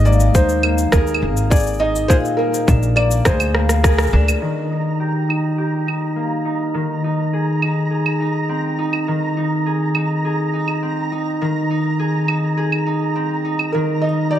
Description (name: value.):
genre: folktronica.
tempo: 103 BPM.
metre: 4/4.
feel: straight.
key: unclear.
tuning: A4 = 440 Hz.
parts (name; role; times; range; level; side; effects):
felt-muted upright piano; melody; 0.0-4.2, 13.7-14.4 s; Bb4 to Eb5; -21 LUFS; right 1 dB; digital delay.
concert harp; arpeggios; 0.0-14.4 s; Bb2 to Ab4; -19 LUFS; left 1 dB; low-pass filter, digital delay.
upright bass; bass; 0.0-4.3 s; Ab1 to Eb2; -17 LUFS; equal; none.
electronic cabasa, claves and rim click; drums; 0.1-13.7 s; none; -22 LUFS; right 2 dB; low-pass filter on perc, low-pass filter on snare, low-pass filter on room.
electronic kick drum; drums; 0.3-4.0 s; none; -15 LUFS; equal; none.
flickering grainy texture; texture; 4.7-14.4 s; Bb5; -27 LUFS; right 4 dB; built-in reverb.
room: moderate echo chamber reverb, RT60 2.4 s.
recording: none.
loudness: -16 LUFS.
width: side -11 dB against mid.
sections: 0.0-4.4 A section; 4.4-14.4 B section.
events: drum fill 3.6-4.4; band accent 3.8; filter sweep on harp 4.4-14.4.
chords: 0.0 Absus2; 2.1 Bb7; 4.4 Eb; 6.8 Abadd9/Eb; 13.7 Eb5.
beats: 0.35 0.93 1.51 | 2.10 2.68 3.26 3.84 | 4.43 5.01 5.59 6.17 | 6.76 7.34 7.92 8.50 | 9.09 9.67 10.25 10.83 | 11.42 12.00 12.58 13.16 | 13.75 14.33.